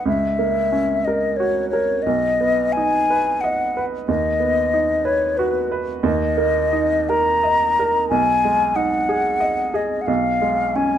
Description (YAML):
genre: classical, romantic duo for flute and grand piano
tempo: 91 BPM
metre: 3/4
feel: rubato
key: B major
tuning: A4 = 440 Hz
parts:
  - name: mellow hollow silver concert flute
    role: melody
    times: 0.0-11.0 s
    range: B4 to A#5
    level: -19 LUFS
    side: left 3 dB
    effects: none
  - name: clear baby grand piano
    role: accompaniment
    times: 0.0-11.0 s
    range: B1 to D#5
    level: -21 LUFS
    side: right 4 dB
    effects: none
room: light reverb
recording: dark, warm production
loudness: -17 LUFS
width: side -10 dB against mid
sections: 0.0-11.0 A section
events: none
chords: 0.1 F#7/C#; 2.1 B; 4.1 B/D#; 6.0 D#5; 8.1 G#m7/B; 10.1 C#7/B